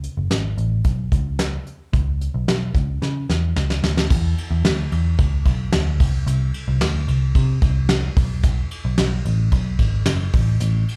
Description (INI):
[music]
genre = jangly indie pop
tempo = 111 BPM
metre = 4/4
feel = straight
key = E mixolydian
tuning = A4 = 441 Hz
[part]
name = vintage muted picked electric bass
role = bass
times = 0.0-10.8 s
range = F#1 to C#3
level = -22 LUFS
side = equal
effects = none
[part]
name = soft brush drum kit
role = drums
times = 0.0-11.0 s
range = crash cymbal, hi-hat, kick drum, ride cymbal, snare drum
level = -23 LUFS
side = equal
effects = none
[sound]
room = little or no reverb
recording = live gig heard through the venue's PA, club reverb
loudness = -20 LUFS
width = mono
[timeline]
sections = 0.0-4.1 A section; 4.1-11.0 B section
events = drum fill 3.0-4.1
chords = none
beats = 0.31 0.85 1.39 | 1.93 2.48 3.02 3.56 | 4.11 4.65 5.19 5.73 | 6.27 6.82 7.36 7.90 | 8.44 8.98 9.52 10.07 | 10.61